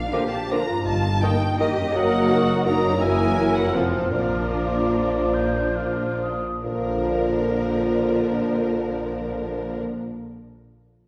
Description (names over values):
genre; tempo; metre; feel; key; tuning
classical; 130-181 BPM; 3/4; rubato; Bb major; A4 = 440 Hz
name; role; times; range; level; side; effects
rich symphonic violin section; melody; 0.0-9.8 s; A4 to Bb5; -33 LUFS; equal; none
concert harp; arpeggios; 0.0-10.6 s; F2 to F5; -35 LUFS; equal; none
dark symphonic cello section; bass; 0.0-9.8 s; Bb2 to Bb4; -32 LUFS; equal; none
rich symphonic double bass section; bass; 0.0-9.8 s; F1 to Bb1; -32 LUFS; equal; none
mellow hollow concert flute; second line; 0.1-9.8 s; D5 to G6; -34 LUFS; equal; none
rich symphonic violin section; second line; 0.1-9.8 s; C4 to Bb4; -34 LUFS; equal; none
warm clarinet; second line; 0.1-9.8 s; Bb4 to D5; -33 LUFS; equal; none
mellow bassoon; accompaniment; 0.1-9.8 s; Eb3 to Gb3; -30 LUFS; equal; none
rich chamber viola section; accompaniment; 0.1-9.8 s; D3 to D4; -30 LUFS; equal; none
dark French horn section; sustained chords; 0.1-9.8 s; Bb3 to F4; -34 LUFS; equal; none
room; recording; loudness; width
wet concert hall reverb, RT60 1.7 s; heard from further back in the room; -22 LUFS; mono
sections
0.0-6.6 A section; 6.6-9.2 B section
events
slowing down 3.6-6.6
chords
0.0 Bb; 0.9 Eb/G; 1.9 Ebm/Gb; 3.0 Gb7; 3.8 F; 4.1 Bb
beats
0.13 0.51 | 0.87 1.22 1.60 | 1.95 2.29 2.66 | 3.01 3.37 3.76 | 4.13 4.53 4.94 | 5.34 5.75 6.21 | 6.64 7.06 7.50 | 7.92 8.35 8.79